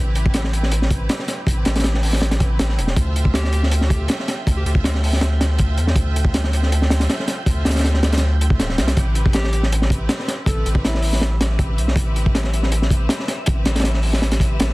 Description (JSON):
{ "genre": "drum and bass, jungle", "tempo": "160 BPM", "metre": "4/4", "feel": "straight", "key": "A minor", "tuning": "A4 = 438 Hz", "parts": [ { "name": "rich studio string section", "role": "sustained chords", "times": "0.0-14.7 s", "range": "C4 to E5", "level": "-31 LUFS", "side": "equal", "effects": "vintage 12-bit sampler grit" }, { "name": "saturated sub bass", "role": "bass", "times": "0.0-14.7 s", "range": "D1 to E2", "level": "-19 LUFS", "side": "equal", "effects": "none" }, { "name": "wind-like tuned noise texture", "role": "texture", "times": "0.0-14.7 s", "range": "E5 to G5", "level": "-35 LUFS", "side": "right 3 dB", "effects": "built-in reverb" }, { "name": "crunchy breakbeat drum kit", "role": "drums", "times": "0.2-14.7 s", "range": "hi-hat, kick drum, snare drum", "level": "-19 LUFS", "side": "equal", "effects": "none" }, { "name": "clear alto saxophone", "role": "melody", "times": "3.3-4.7, 9.3-11.4 s", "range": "E4 to A4", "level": "-31 LUFS", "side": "equal", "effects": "dub echo" } ], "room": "small room ambience", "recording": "dense, heavily limited modern master, vinyl crackle", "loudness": "-16 LUFS", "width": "side -21 dB against mid", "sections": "0.0-14.7 A section", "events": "none", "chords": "0.0 Am7; 3.0 Dm7; 9.0 Am7", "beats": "0.34 0.72 1.09 | 1.47 1.84 2.22 2.59 | 2.97 3.34 3.72 4.09 | 4.47 4.84 5.22 5.59 | 5.97 6.34 6.72 7.09 | 7.47 7.84 8.22 8.59 | 8.97 9.34 9.72 10.09 | 10.47 10.84 11.22 11.59 | 11.97 12.34 12.72 13.09 | 13.47 13.84 14.22 14.59" }